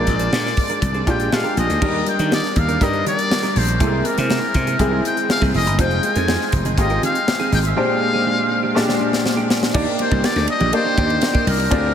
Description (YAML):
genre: polished 1980s jazz-funk pop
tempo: 121 BPM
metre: 4/4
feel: straight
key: Eb major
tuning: A4 = 440 Hz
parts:
  - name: trumpet with metal mute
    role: melody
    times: 0.0-11.9 s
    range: Bb4 to Ab5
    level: -22 LUFS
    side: left 3 dB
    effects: tape echo
  - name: clear baby grand piano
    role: accompaniment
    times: 0.0-11.9 s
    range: Bb2 to D5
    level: -22 LUFS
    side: left 1 dB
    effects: analog chorus
  - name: clean electric guitar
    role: riff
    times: 0.0-11.9 s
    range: Ab3 to C5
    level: -27 LUFS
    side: right 6 dB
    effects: wide subtle chorus
  - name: slap bass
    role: bass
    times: 0.0-11.9 s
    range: F1 to Eb3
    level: -21 LUFS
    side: equal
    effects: none
  - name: tight funk drum kit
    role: drums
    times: 0.1-11.8 s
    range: crash cymbal, hi-hat, kick drum, ride cymbal, snare drum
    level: -23 LUFS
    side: equal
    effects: none
  - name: congas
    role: percussion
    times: 0.1-11.8 s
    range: none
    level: -33 LUFS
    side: left 3 dB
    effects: none
room: moderate huge ambient reverb, RT60 7.9 s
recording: dreamy mix soaked in reverb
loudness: -16 LUFS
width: side -9 dB against mid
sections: 0.0-1.8 A section; 1.8-9.7 B section; 9.7-11.9 C section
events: drum fill 8.8-9.7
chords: 0.0 Bb7; 1.8 Ebmaj7; 3.8 C7b13; 5.8 Fm7; 7.8 Bb13; 9.7 Ebmaj7